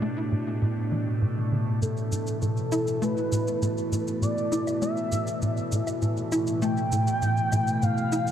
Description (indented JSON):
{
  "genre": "ambient, sequencer-driven space music",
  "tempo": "100 BPM",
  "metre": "4/4",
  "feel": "straight",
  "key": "unclear",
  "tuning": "A4 = 441 Hz",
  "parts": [
    { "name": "phased analog pad", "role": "sustained chords", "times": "0.0-8.3 s", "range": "A2 to D4", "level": "-28 LUFS", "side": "right 1 dB", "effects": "phaser, chorus" },
    { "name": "tight sequencer bass", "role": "riff", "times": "0.0-8.3 s", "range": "A2 to E4", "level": "-28 LUFS", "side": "equal", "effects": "ensemble chorus, tape echo" },
    { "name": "wind-like tuned noise texture", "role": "texture", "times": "0.0-8.3 s", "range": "A3 to B5", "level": "-41 LUFS", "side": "left 1 dB", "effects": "built-in reverb" },
    { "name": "pulse-width lead", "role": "melody", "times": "1.8-8.3 s", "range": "A4 to G5", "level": "-30 LUFS", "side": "left 1 dB", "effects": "chorus, tape echo" },
    { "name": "cabasa and woodblock", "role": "percussion", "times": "1.8-8.3 s", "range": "none", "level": "-39 LUFS", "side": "left 1 dB", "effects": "tape echo" }
  ],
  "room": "wet huge ambient reverb, RT60 7.8 s",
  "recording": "cassette tape",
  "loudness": "-24 LUFS",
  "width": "side -10 dB against mid",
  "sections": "0.0-8.3 A section",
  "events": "filter sweep on analog synth bass 0.0-8.3",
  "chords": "0.0 Asus2",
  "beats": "0.02 0.62 1.22 | 1.82 2.42 3.02 3.62 | 4.22 4.82 5.42 6.02 | 6.62 7.22 7.82"
}